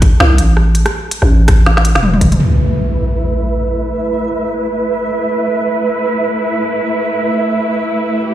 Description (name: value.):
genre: half-time drum and bass.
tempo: 164 BPM.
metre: 4/4.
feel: swing 58% on 16ths, half-time.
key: unclear.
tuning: A4 = 439 Hz.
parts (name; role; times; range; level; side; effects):
growling 808-style bass; bass; 0.0-2.4 s; E1 to C2; -10 LUFS; equal; none.
electronic kick drum; drums; 0.0-2.3 s; none; -10 LUFS; equal; none.
organic electronic drum kit; drums; 0.0-2.4 s; hi-hat, rim click, snare drum, toms; -15 LUFS; equal; none.
muted symphonic cello section; sustained chords; 2.4-8.3 s; A3 to B4; -16 LUFS; right 2 dB; sidechain pumping, low-pass filter.
impact; sound effects; 2.4-3.9 s; none; -16 LUFS; equal; none.
flickering grainy texture; texture; 3.1-8.3 s; E5; -22 LUFS; right 1 dB; built-in reverb.
room: moderate echo chamber reverb, RT60 1.3 s.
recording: played on a big sound system in a bare room, stone room reverb.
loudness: -12 LUFS.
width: side -12 dB against mid.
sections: 0.0-2.4 A section; 2.4-8.3 B section.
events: drum fill 1.7-2.4; impact 2.4-3.9; filter sweep on cello section 2.4-8.3.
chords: 0.0 A5.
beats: 0.20 0.57 | 0.94 1.30 1.67 2.03 | 2.40 2.77 3.13 3.50 | 3.86 4.23 4.59 4.96 | 5.33 5.69 6.06 6.42 | 6.79 7.16 7.52 7.89 | 8.25.